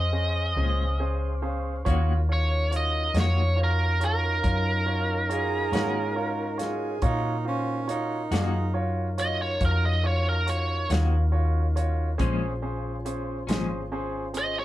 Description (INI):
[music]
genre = slow blues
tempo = 46 BPM (dotted quarters)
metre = 12/8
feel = straight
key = unclear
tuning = A4 = 440 Hz
[part]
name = biting lead guitar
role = melody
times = 0.0-14.6 s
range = Bb4 to Eb5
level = -28 LUFS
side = right 1 dB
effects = overdrive
[part]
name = bright grand piano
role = accompaniment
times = 0.0-14.6 s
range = Db4 to Ab5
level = -33 LUFS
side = right 2 dB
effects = none
[part]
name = tonewheel organ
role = sustained chords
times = 0.0-14.6 s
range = Db4 to F5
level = -37 LUFS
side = left 1 dB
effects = overdrive, slow rotary speaker
[part]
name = hollow-body short-scale fingered electric bass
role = bass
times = 0.0-14.6 s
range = Ab1 to Bb2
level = -26 LUFS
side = equal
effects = none
[part]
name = clean electric guitar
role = accompaniment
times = 0.6-13.7 s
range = Bb2 to Gb4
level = -32 LUFS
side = left 4 dB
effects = tremolo
[part]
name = warm soul drum kit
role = drums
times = 1.9-14.5 s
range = hi-hat, kick drum, snare drum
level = -29 LUFS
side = equal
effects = none
[part]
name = growling tenor saxophone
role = second line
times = 5.3-8.7 s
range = Db4 to Bb4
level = -31 LUFS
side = right 4 dB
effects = none
[sound]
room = moderate small room reverb, RT60 0.5 s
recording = band playing live in one room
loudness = -23 LUFS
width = side -14 dB against mid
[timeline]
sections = 0.0-14.6 A section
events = grand piano fill 0.6-1.9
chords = 0.0 Bbm7; 1.9 Ebm7; 12.2 Bbm7